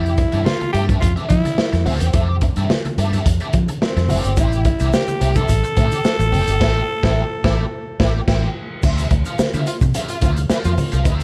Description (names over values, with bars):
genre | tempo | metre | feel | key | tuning
funk | 108 BPM | 4/4 | straight | D minor | A4 = 440 Hz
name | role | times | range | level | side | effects
growling tenor saxophone | melody | 0.0-8.3 s | C4 to A4 | -25 LUFS | equal | plate reverb
biting overdriven guitar | accompaniment | 0.0-11.2 s | F4 to G5 | -30 LUFS | equal | wah
vintage muted fingered electric bass | bass | 0.0-11.2 s | F1 to F3 | -21 LUFS | equal | none
crunchy breakbeat drum kit | drums | 0.1-11.2 s | crash cymbal, hi-hat, kick drum, snare drum | -22 LUFS | equal | none
congas | percussion | 0.2-10.9 s | none | -29 LUFS | equal | none
tube shaker | percussion | 4.4-11.2 s | none | -43 LUFS | equal | none
warm tenor saxophone | second line | 6.6-11.0 s | E4 to F4 | -32 LUFS | equal | none
room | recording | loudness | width
light reverb | dark, warm production | -18 LUFS | mono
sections
0.0-8.8 A section; 8.8-11.2 B section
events
band accent 6.6-8.8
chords
0.0 Fmaj9; 4.4 Am7; 8.8 Dm9